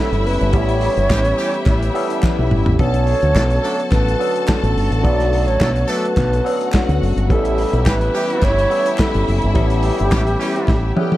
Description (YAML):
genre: disco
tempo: 106 BPM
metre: 4/4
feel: straight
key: unclear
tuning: A4 = 438 Hz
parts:
  - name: mellow wooden-headed alto flute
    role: melody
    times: 0.0-11.2 s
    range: G4 to D5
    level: -21 LUFS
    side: right 2 dB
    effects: none
  - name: clear symphonic string section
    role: second line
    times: 0.0-11.2 s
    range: E4 to A5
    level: -26 LUFS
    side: left 1 dB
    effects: none
  - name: barky tine electric piano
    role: accompaniment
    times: 0.0-11.2 s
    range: F#3 to B4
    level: -23 LUFS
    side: left 2 dB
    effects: phaser
  - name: warm French horn section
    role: sustained chords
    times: 0.0-11.2 s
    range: D3 to G4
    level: -28 LUFS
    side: right 1 dB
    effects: none
  - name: fingered electric bass with an envelope filter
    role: bass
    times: 0.1-10.9 s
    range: F#1 to D2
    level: -18 LUFS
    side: equal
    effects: none
  - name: warm soul drum kit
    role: drums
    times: 0.1-11.2 s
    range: handclaps, hi-hat, kick drum, snare drum, toms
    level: -18 LUFS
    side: equal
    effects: none
  - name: clear horn section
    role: stabs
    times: 1.1-10.8 s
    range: E3 to A4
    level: -25 LUFS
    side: right 1 dB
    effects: none
  - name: group handclap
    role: percussion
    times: 1.1-10.8 s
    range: none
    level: -35 LUFS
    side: right 1 dB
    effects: none
room: little or no reverb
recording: dark, warm production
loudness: -14 LUFS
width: side -15 dB against mid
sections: 0.0-11.2 A section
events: drum fill 2.2-2.8, 10.7-11.2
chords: 0.0 A7; 2.8 Bm7; 7.3 A7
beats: | 0.53 1.10 1.66 2.23 | 2.79 3.35 3.92 4.48 | 5.04 5.61 6.17 6.74 | 7.30 7.87 8.43 9.00 | 9.56 10.13 10.69